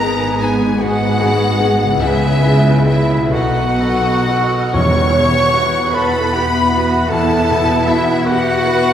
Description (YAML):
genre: cinematic, emotional film score for orchestra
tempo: 40-52 BPM (dotted quarters)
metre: 6/8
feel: rubato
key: unclear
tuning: A4 = 440 Hz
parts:
  - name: warm symphonic violin section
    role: melody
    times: 0.0-8.9 s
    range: D#5 to C#6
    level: -21 LUFS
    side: left 3 dB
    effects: none
  - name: bright silver concert flute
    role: second line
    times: 0.0-8.9 s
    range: E5 to C#6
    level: -23 LUFS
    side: equal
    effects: none
  - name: clear symphonic violin section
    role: second line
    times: 0.0-8.9 s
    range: D#4 to C#5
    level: -26 LUFS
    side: left 1 dB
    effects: none
  - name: dark cor anglais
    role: second line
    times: 0.0-8.9 s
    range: E4 to G#5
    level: -23 LUFS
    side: right 2 dB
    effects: none
  - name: warm clarinet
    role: second line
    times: 0.0-8.9 s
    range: E4 to C#5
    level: -23 LUFS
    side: right 1 dB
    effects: none
  - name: bright grand piano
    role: accompaniment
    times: 0.0-8.9 s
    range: B1 to F#5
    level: -22 LUFS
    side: left 1 dB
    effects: none
  - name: rich symphonic viola section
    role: accompaniment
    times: 0.0-8.9 s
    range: G#3 to F#5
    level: -23 LUFS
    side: equal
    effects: none
  - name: warm French horn section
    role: sustained chords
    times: 0.0-8.9 s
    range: B3 to A4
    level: -23 LUFS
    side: left 2 dB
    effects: none
  - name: concert harp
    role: arpeggios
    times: 0.0-8.9 s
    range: E2 to F#5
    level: -25 LUFS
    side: left 3 dB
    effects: none
  - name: rich symphonic cello section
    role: bass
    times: 0.0-8.9 s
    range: G#2 to B4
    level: -20 LUFS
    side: equal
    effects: none
  - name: warm symphonic double bass section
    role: bass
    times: 0.0-8.9 s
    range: G#1 to E2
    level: -23 LUFS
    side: right 2 dB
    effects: none
  - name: cymbal swell and tam-tam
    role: percussion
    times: 2.0-7.8 s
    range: none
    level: -30 LUFS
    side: right 1 dB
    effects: none
  - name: timpani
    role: percussion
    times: 4.8-5.9 s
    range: E2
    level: -22 LUFS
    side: right 1 dB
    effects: none
room: wet scoring stage reverb, RT60 1.5 s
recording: heard from further back in the room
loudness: -12 LUFS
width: side -9 dB against mid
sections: 0.0-4.7 A section; 4.7-8.9 B section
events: band accent 4.7-5.5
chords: 0.0 G#m; 2.0 C#m7; 3.3 B7; 4.7 Emadd9